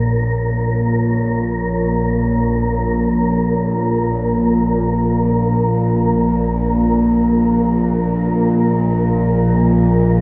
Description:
dark ambient drone; free time; A4 = 439 Hz
deep dark ambient pad; sustained chords; 0.1-10.2 s; Bb3 to Eb5; -27 LUFS; equal
bowed-like drone; drone; 0.0-10.2 s; Bb1 to Bb2; -18 LUFS; equal; built-in reverb
wind-like tuned noise texture; texture; 0.0-10.2 s; Bb3 to Bb4; -24 LUFS; equal; built-in reverb
wet plate reverb, RT60 2.8 s; dreamy mix soaked in reverb; -17 LUFS; mono
0.0-10.2 A section
filter sweep on synth drone 0.0-10.2
0.0 Dbadd9/Bb

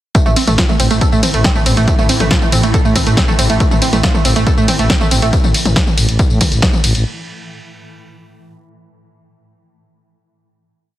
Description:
driving peak-time techno; 139 BPM; 4/4; straight; A minor; A4 = 440 Hz
analog pluck; riff; 0.1-5.3 s; A3 to A4; -17 LUFS; right 3 dB; chorus, overdrive, sidechain pumping, digital delay
swarming drone; drone; 1.0-5.4 s; A2 to E3; -23 LUFS; right 1 dB; built-in reverb, sidechain pumping
electronic kick drum; drums; 0.1-6.7 s; -14 LUFS; equal
punchy analog drum machine; drums; 0.1-7.0 s; hi-hat, ride cymbal, snare drum, tambourine, toms; -17 LUFS; left 1 dB; sidechain pumping on hats, sidechain pumping on perc, sidechain pumping on toms, sidechain pumping on cymbals
growling FM bass; bass; 0.3-7.0 s; A1 to A2; -16 LUFS; equal; sidechain pumping
light reverb; heavily compressed radio sound, multiband compression; -10 LUFS; side -14 dB against mid
0.1-7.1 drop
drop 0.1-7.1
0.1 Am

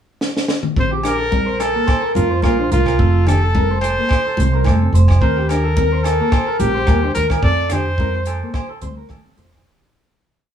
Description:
highlife guitar band; 108 BPM; 4/4; swing 54% on 16ths; Bb major; A4 = 440 Hz
compact cocktail drum kit; drums; 0.2-9.7 s; hi-hat, kick drum, rim click, snare drum, toms; -20 LUFS; equal
warm trumpet; melody; 0.8-8.6 s; F4 to D5; -21 LUFS; equal
mellow electric guitar; accompaniment; 0.8-9.5 s; A3 to D4; -26 LUFS; left 2 dB
electric guitar through a small old amp; arpeggios; 0.8-9.6 s; G4 to C5; -23 LUFS; right 1 dB
upright bass; bass; 0.8-9.6 s; F1 to F2; -17 LUFS; right 1 dB
congas; percussion; 0.8-9.2 s; -27 LUFS; left 3 dB
agogo bells; percussion; 1.0-9.7 s; -29 LUFS; right 2 dB
moderate studio reverb, RT60 0.6 s; band playing live in one room; -14 LUFS; side -9 dB against mid
0.0-0.8 pickup bar; 0.8-9.7 groove
drum fill 0.2-0.8; fade-out 7.4-9.7
0.0 N.C.; 0.8 Bbmaj7; 3.0 F; 5.2 Ebmaj7; 7.4 F

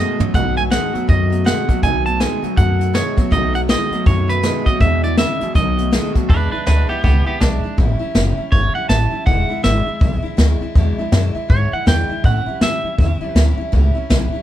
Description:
rockabilly; 161 BPM; 4/4; swing 62% on 8ths; E mixolydian; A4 = 440 Hz
clean electric guitar; melody; 0.0-13.3 s; B3 to A5; -21 LUFS; right 2 dB
picked steel-string acoustic guitar; accompaniment; 0.0-14.4 s; E2 to F#4; -25 LUFS; left 2 dB
electric guitar through a small old amp; riff; 0.0-6.3 s; E2 to G#3; -23 LUFS; right 2 dB
upright bass; bass; 0.2-14.4 s; E1 to A2; -17 LUFS; equal
jazz brush drum kit; drums; 0.2-14.2 s; hi-hat, kick drum, snare drum, toms; -18 LUFS; equal
light reverb; band playing live in one room; -14 LUFS; side -12 dB against mid
0.0-6.3 A section; 6.3-14.4 B section
drum fill 0.0-0.3; clean electric guitar solo 6.3-14.4
0.0 B7; 4.8 E7; 5.6 B7; 6.3 E7; 7.8 A7; 9.3 E7; 12.2 A7

